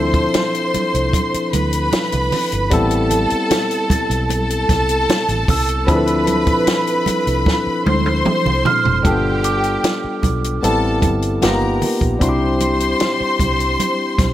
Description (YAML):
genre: lush 1970s-style soul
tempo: 76 BPM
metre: 4/4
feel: straight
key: unclear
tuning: A4 = 440 Hz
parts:
  - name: rich studio string section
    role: second line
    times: 0.0-14.3 s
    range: G4 to C6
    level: -20 LUFS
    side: equal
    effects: tape echo
  - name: barky tine electric piano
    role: accompaniment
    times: 0.0-14.3 s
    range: F3 to A4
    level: -20 LUFS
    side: left 2 dB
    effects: overdrive
  - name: vintage muted fingered electric bass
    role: bass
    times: 0.0-14.3 s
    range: F1 to D2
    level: -22 LUFS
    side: equal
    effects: none
  - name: compact cocktail drum kit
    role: drums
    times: 0.1-14.3 s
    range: hi-hat, kick drum, snare drum, toms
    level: -20 LUFS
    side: equal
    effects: none
  - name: congas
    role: percussion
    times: 0.4-14.3 s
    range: none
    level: -26 LUFS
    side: right 5 dB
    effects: none
  - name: glockenspiel with rubber mallets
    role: texture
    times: 3.9-11.0 s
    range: D6 to A6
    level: -25 LUFS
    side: right 5 dB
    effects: none
room: light reverb, small room ambience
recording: none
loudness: -15 LUFS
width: side -13 dB against mid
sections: 0.0-9.1 A section; 9.1-14.3 B section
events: drum fill 7.5-9.1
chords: 0.0 Dm7; 2.7 Am7; 5.9 Dm7; 9.1 G9; 10.6 Am11; 11.4 G7alt; 12.2 C